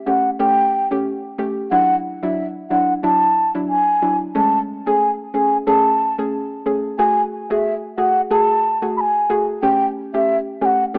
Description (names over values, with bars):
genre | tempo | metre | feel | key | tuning
dancehall | 91 BPM | 4/4 | swing 56% on 16ths | unclear | A4 = 440 Hz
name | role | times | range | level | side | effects
mellow hollow wooden flute | melody | 0.1-11.0 s | E5 to B5 | -20 LUFS | equal | none
soft round pluck | accompaniment | 0.1-11.0 s | F#3 to G#4 | -24 LUFS | equal | chorus
room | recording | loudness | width
light reverb, studio reverb | AM radio sound | -18 LUFS | mono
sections
0.0-11.0 A section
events
none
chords
0.0 A7; 1.7 Dadd9; 4.4 Amaj7; 7.0 F#madd9; 9.6 A7